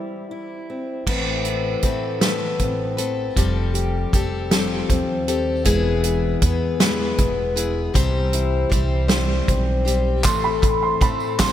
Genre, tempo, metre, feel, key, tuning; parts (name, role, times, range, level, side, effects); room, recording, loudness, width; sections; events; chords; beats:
indie folk with a building arrangement; 52 BPM (dotted quarters); 6/8; straight; A minor; A4 = 440 Hz
fingerpicked steel-string acoustic guitar; accompaniment; 0.0-11.5 s; E2 to G#4; -27 LUFS; left 1 dB; slapback echo
picked plugged-in steel-string acoustic guitar; accompaniment; 1.1-11.5 s; A2 to C5; -24 LUFS; left 5 dB; slapback echo
upright bass; bass; 1.1-11.5 s; E1 to A2; -24 LUFS; equal
natural country drum kit; drums; 1.1-11.5 s; crash cymbal, hi-hat, kick drum, snare drum; -21 LUFS; right 1 dB
dark upright piano; arpeggios; 10.2-11.5 s; B5 to C6; -22 LUFS; right 7 dB; slapback echo
group handclap; percussion; 10.2-11.5 s; -29 LUFS; left 2 dB
tambourine; percussion; 10.2-11.5 s; -36 LUFS; right 4 dB
moderate lush hall reverb, RT60 2.7 s; big arena sound; -18 LUFS; side -11 dB against mid
0.0-1.1 A section; 1.1-11.5 B section
build-up 1.1-11.5; drum fill 1.1-11.5
0.0 C; 1.1 Amadd9; 3.4 Fadd9; 5.7 E; 8.0 C; 10.3 Amadd9
| 1.07 2.22 | 3.37 4.52 | 5.67 6.81 | 7.96 9.11 | 10.25 11.40